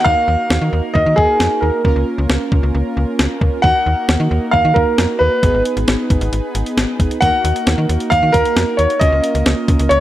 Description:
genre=synth-pop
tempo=134 BPM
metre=4/4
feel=straight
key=Eb minor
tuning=A4 = 443 Hz
part: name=warm grand piano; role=melody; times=0.0-10.0 s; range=Ab4 to Gb5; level=-15 LUFS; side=equal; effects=tape echo
part: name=analog synth brass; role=accompaniment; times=0.0-10.0 s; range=Bb3 to Cb5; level=-21 LUFS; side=right 2 dB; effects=chorus
part: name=slap-like FM bass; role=bass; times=0.1-10.0 s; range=Ab1 to Eb3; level=-18 LUFS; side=equal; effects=none
part: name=clean 12-bit digital drum machine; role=drums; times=0.1-10.0 s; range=hi-hat, kick drum, snare drum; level=-18 LUFS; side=equal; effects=none
room=light reverb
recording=none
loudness=-13 LUFS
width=side -13 dB against mid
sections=0.1-10.0 A section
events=none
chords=0.1 Ebmadd9; 1.8 Bbm/Db; 3.6 Ebm; 5.4 Abm; 7.2 Ebm; 9.0 Bbm/Db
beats=| 0.06 0.51 0.95 1.40 | 1.85 2.30 2.74 3.19 | 3.64 4.09 4.53 4.98 | 5.43 5.88 6.33 6.77 | 7.22 7.67 8.12 8.56 | 9.01 9.46 9.91

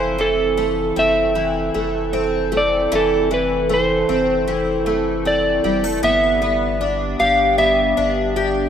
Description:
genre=dream pop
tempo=77 BPM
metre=4/4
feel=straight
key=F lydian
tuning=A4 = 438 Hz
part: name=electric slide guitar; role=melody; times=0.0-8.7 s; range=A4 to F5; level=-18 LUFS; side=equal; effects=ping-pong delay
part: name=glass harmonica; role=sustained chords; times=0.0-8.7 s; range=G3 to D5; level=-24 LUFS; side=right 2 dB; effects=none
part: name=picked twelve-string acoustic guitar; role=arpeggios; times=0.0-8.7 s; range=E3 to G4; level=-22 LUFS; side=left 2 dB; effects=analog chorus, ping-pong delay
part: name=saturated sub bass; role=bass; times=0.0-8.7 s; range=F1 to G1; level=-29 LUFS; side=equal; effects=none
room=moderate lush hall reverb, RT60 2.6 s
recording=rough home demo mix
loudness=-16 LUFS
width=side -8 dB against mid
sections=0.0-8.7 A section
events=none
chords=0.0 Fmaj7; 6.0 Em7/G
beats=0.58 1.36 2.14 | 2.92 3.69 4.47 5.25 | 6.03 6.81 7.59 8.37

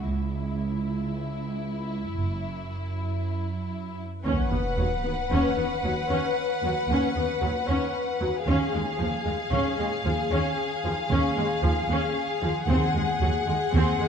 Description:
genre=cinematic, suspense film score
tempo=57 BPM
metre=4/4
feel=straight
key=unclear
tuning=A4 = 440 Hz
part: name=dark symphonic double bass section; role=bass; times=0.0-13.8 s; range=F#1 to Eb2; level=-30 LUFS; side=right 2 dB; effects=none
part: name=rich studio cello section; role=bass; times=0.0-14.1 s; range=C#2 to F#2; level=-30 LUFS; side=right 3 dB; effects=none
part: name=warm symphonic violin section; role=melody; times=0.1-14.1 s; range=E4 to F#5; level=-32 LUFS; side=left 4 dB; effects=none
part: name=warm symphonic violin section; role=second line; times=4.3-14.1 s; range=Ab4 to B4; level=-29 LUFS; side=left 4 dB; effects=none
part: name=warm symphonic viola section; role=accompaniment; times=4.3-14.1 s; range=F3 to C#4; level=-29 LUFS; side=equal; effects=none
part: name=sub drop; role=sound effects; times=4.3-8.5 s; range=none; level=-32 LUFS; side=equal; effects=none
part: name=timpani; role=percussion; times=12.7-14.1 s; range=Eb3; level=-32 LUFS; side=left 1 dB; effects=none
room=moderate scoring stage reverb, RT60 1.7 s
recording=nothing above 10.8 kHz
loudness=-24 LUFS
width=side -7 dB against mid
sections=0.0-4.3 A section; 4.3-14.1 B section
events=impact 4.3-8.5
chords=0.0 C#m; 2.2 Esus2/F#; 4.3 Bsus2/Eb; 8.5 Dbadd9/Eb; 12.7 Ab7/Eb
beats=| 0.05 1.10 2.15 3.21 | 4.26 5.31 6.36 7.42 | 8.47 9.52 10.57 11.63 | 12.68 13.73

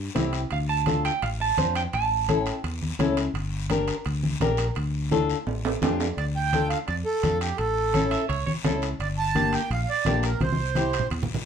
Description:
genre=latin, cumbia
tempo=170 BPM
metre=4/4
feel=straight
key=D minor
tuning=A4 = 439 Hz
part: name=fingered electric bass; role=bass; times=0.0-11.2 s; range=G1 to F2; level=-28 LUFS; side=equal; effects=none
part: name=flamenco guitar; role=accompaniment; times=0.1-11.0 s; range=Bb3 to C5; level=-27 LUFS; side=left 5 dB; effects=none
part: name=congas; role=percussion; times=0.2-11.4 s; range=none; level=-28 LUFS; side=left 1 dB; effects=none
part: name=guiro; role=percussion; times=0.2-11.5 s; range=none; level=-39 LUFS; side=left 6 dB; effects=none
part: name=timbales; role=percussion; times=0.2-11.3 s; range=none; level=-33 LUFS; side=right 6 dB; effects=none
part: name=semi-hollow electric guitar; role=second line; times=0.5-2.6, 7.9-8.9 s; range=A4 to A5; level=-27 LUFS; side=right 7 dB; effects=none
part: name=accordion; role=melody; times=6.2-11.1 s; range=G4 to A5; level=-26 LUFS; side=right 4 dB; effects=none
room=wet studio ambience, RT60 0.5 s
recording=heard from further back in the room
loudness=-23 LUFS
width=side -7 dB against mid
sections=0.0-6.2 A section; 6.2-11.5 B section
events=clean electric guitar solo 0.0-6.2; drum fill 5.1-6.2, 10.4-11.5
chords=0.0 C; 0.5 Dm; 1.9 A; 3.3 Gm; 4.8 Dm; 7.6 A; 9.0 Gm; 10.4 C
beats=0.16 | 0.51 0.87 1.22 1.58 | 1.93 2.28 2.64 2.99 | 3.35 3.70 4.05 4.41 | 4.76 5.11 5.47 5.82 | 6.17 6.53 6.88 7.23 | 7.58 7.94 8.29 8.64 | 8.99 9.35 9.70 10.05 | 10.40 10.76 11.11

